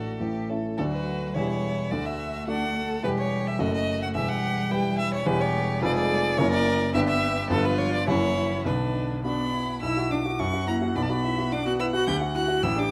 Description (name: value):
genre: quick classical-period movement for piano quartet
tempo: 107 BPM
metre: 2/4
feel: straight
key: D major, B minor from 5.3 s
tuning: A4 = 445 Hz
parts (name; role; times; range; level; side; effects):
- clear violin; melody; 0.0-12.9 s; A4 to G6; -32 LUFS; equal; none
- clear violin; second line; 0.0-12.9 s; D4 to G5; -36 LUFS; equal; none
- rich cello; second line; 0.0-12.8 s; A2 to G4; -33 LUFS; equal; none
- warm grand piano; accompaniment; 0.0-12.9 s; E1 to E5; -29 LUFS; equal; none
room: light reverb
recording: dark, warm production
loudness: -26 LUFS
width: mono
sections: 0.8-9.8 A section; 9.8-12.9 B section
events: none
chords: 0.2 A; 0.8 D; 1.4 C#dim/E; 1.9 D; 3.0 Em; 3.6 D#dim/F#; 4.1 Em; 5.3 C#dim/E; 5.8 Fdim7; 6.4 F#7; 6.9 G; 7.5 G7; 8.1 F#7; 8.7 Bm; 10.4 F#7; 11.0 Bm; 12.1 D